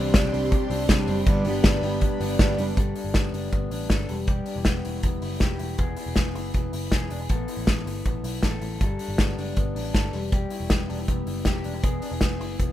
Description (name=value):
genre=jangly indie pop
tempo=159 BPM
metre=4/4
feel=straight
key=G major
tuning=A4 = 440 Hz
part: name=picked steel-string acoustic guitar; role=accompaniment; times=0.0-2.8 s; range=G2 to G4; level=-28 LUFS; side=right 4 dB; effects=none
part: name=string machine, cellos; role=sustained chords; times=0.0-2.8 s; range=G4 to C6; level=-34 LUFS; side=equal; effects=ensemble chorus
part: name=electric guitar through a small old amp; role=arpeggios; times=0.0-12.7 s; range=G3 to A4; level=-30 LUFS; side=left 3 dB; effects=none
part: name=vintage muted picked electric bass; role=bass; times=0.0-12.7 s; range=E1 to C2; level=-31 LUFS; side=equal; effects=none
part: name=loose indie drum kit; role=drums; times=0.1-12.7 s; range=hi-hat, kick drum, snare drum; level=-24 LUFS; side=equal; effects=none
room=little or no reverb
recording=rough home demo mix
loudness=-22 LUFS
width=side -13 dB against mid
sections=0.0-2.8 A section; 2.8-12.7 B section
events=none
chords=0.0 Csus2; 1.3 G; 2.8 Gadd9; 4.1 Em; 5.8 E; 7.3 Asus2; 8.8 Gadd9; 10.1 Em; 11.8 E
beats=0.14 0.52 0.89 | 1.27 1.64 2.02 2.39 | 2.77 3.15 3.52 3.90 | 4.28 4.66 5.03 5.41 | 5.79 6.17 6.54 6.92 | 7.30 7.68 8.05 8.43 | 8.81 9.19 9.57 9.95 | 10.32 10.70 11.08 11.46 | 11.84 12.21 12.59